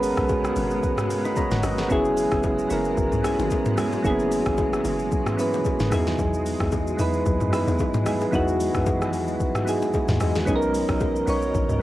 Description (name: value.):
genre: amapiano.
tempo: 112 BPM.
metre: 4/4.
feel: swing 55% on 16ths.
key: unclear.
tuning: A4 = 441 Hz.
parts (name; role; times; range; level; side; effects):
soft electric-piano-like synth keys; accompaniment; 0.0-11.8 s; F#3 to B5; -23 LUFS; right 1 dB; chorus, cassette tape.
granular cloud pad; sustained chords; 0.0-11.8 s; C#3 to D#5; -32 LUFS; left 1 dB; built-in reverb, sidechain pumping, cassette tape.
tight log drum bass; bass; 0.0-11.8 s; F#1 to F#2; -28 LUFS; equal; none.
smooth R&B drum kit; drums; 0.0-11.8 s; hi-hat, kick drum, rim click, shaker, snare drum, toms; -27 LUFS; equal; cassette tape.
bongos and congas; percussion; 0.3-11.7 s; none; -34 LUFS; left 5 dB; none.
room: moderate booth ambience, RT60 0.2 s.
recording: home recording on cassette.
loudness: -21 LUFS.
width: side -15 dB against mid.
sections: 0.0-11.8 A section.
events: none.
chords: 0.0 G#m11; 1.9 F#9sus4; 5.9 Emaj9; 10.5 Bmaj9.